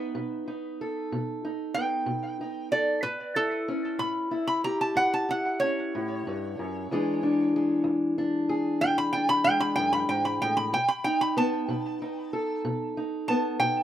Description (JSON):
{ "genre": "acoustic country blues, solo or duo", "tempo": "62 BPM (dotted quarters)", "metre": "12/8", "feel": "straight", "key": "unclear", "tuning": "A4 = 440 Hz", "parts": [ { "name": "fingerpicked steel-string acoustic guitar", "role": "accompaniment", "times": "0.0-13.8 s", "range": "E2 to A4", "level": "-28 LUFS", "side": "equal", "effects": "none" }, { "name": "lap resonator guitar", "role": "melody", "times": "1.7-13.8 s", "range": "A4 to B5", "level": "-26 LUFS", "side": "right 1 dB", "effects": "tape echo" } ], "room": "moderate studio reverb, RT60 0.5 s", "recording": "rough home demo mix", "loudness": "-25 LUFS", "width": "side -11 dB against mid", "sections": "0.0-13.8 A section", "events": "resonator guitar played with a steel bar solo 0.0-13.8", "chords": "0.0 B7; 3.0 A7; 6.9 E7; 10.7 B7", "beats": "0.14 1.11 2.07 | 3.04 4.00 4.97 5.93 | 6.89 7.85 8.82 9.78 | 10.74 11.70 12.66 13.62" }